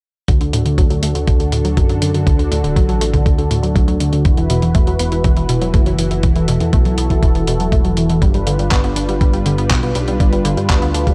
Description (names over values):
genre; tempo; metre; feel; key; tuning
italo disco; 121 BPM; 4/4; straight; unclear; A4 = 440 Hz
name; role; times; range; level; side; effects
warm analog pad; sustained chords; 0.3-11.1 s; D3 to B4; -23 LUFS; equal; chorus
analog pluck; arpeggios; 0.3-11.1 s; A2 to D4; -23 LUFS; equal; chorus, cassette tape, tape echo
fat analog bass; bass; 0.3-11.1 s; D1 to G2; -22 LUFS; equal; none
dusty soul sampler-style drum kit; drums; 0.3-11.1 s; handclaps, hi-hat; -28 LUFS; equal; none
electronic kick drum; drums; 0.3-11.1 s; none; -16 LUFS; equal; none
room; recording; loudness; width
digital ambience; dry, gritty hardware recording; -15 LUFS; mono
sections
0.3-11.1 A section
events
filter sweep on analog synth bass 0.3-11.1; filter sweep on synth arpeggio sound 0.3-11.1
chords
0.3 D; 4.3 Esus2; 8.2 G7